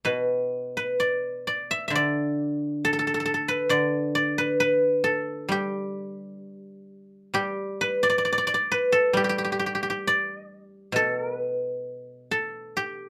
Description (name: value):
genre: chinese traditional, Chinese solo plucked strings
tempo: 66 BPM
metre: 2/4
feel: rubato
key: G gong mode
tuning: A4 = 440 Hz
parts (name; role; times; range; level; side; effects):
- guzheng; solo; 0.0-13.1 s; B2 to E5; -26 LUFS; equal; none
room: light reverb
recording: none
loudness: -25 LUFS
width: mono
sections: 0.0-7.3 A section; 7.3-13.1 B section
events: none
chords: none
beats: | 0.08 1.01 | 1.93 2.83 | 3.72 4.61 | 5.51 6.42 | 7.34 8.26 | 9.16 10.05 | 10.94 11.84 | 12.76